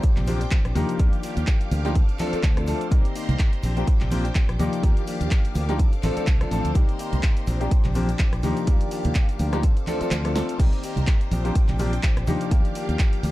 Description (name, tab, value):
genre	filtered disco house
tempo	125 BPM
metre	4/4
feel	swing 56% on 16ths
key	unclear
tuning	A4 = 441 Hz
part	clear grand piano	accompaniment	0.0-13.3 s	Eb3 to D5	-29 LUFS	left 2 dB	phaser, sidechain pumping
part	phased string machine	sustained chords	0.0-13.3 s	G4 to D6	-37 LUFS	equal	ensemble chorus, phaser, vintage 12-bit sampler grit, sidechain pumping
part	direct-recorded clean electric guitar	riff	0.0-13.3 s	F3 to A4	-34 LUFS	left 4 dB	sidechain pumping
part	modern bright fingered electric bass	bass	0.0-13.3 s	A1 to Eb2	-25 LUFS	equal	sidechain pumping
part	electronic kick drum	drums	0.0-13.1 s	none	-20 LUFS	equal	none
part	punchy analog drum machine	drums	0.0-13.3 s	crash cymbal, handclaps, hi-hat, rim click, snare drum	-34 LUFS	equal	sidechain pumping on hats, sidechain pumping on cymbals
part	egg shaker and congas	percussion	0.0-13.3 s	none	-32 LUFS	right 2 dB	sidechain pumping on perc
room	digital ambience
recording	dark, warm production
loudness	-20 LUFS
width	side -17 dB against mid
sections	0.0-13.3 A section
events	kick drops out 10.1-10.6; drum fill 10.4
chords	0.0 Bb69; 0.8 Ebmaj9; 2.0 Dm7; 2.9 Cm7; 3.6 Bb69; 4.6 Ebmaj9; 5.8 Dm7; 6.8 Cm7; 7.5 Bb69; 8.4 Ebmaj9; 9.6 Dm7; 10.6 Cm7; 11.3 Bb69; 12.3 Ebmaj9